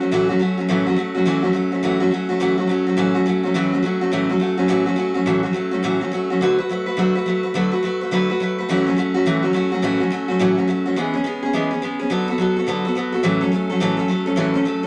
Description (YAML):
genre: rock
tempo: 210 BPM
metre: 4/4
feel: swing 63% on 8ths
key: A major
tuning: A4 = 441 Hz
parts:
  - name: picked steel-string acoustic guitar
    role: solo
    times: 0.0-14.9 s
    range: A2 to B4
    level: -20 LUFS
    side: equal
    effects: none
room: moderate studio reverb, RT60 0.5 s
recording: none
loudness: -20 LUFS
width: mono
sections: 0.0-1.8 A section; 1.8-14.9 B section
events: none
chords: 0.0 A6; 6.4 D6; 8.7 A6; 11.0 E6; 12.1 D6; 13.2 A6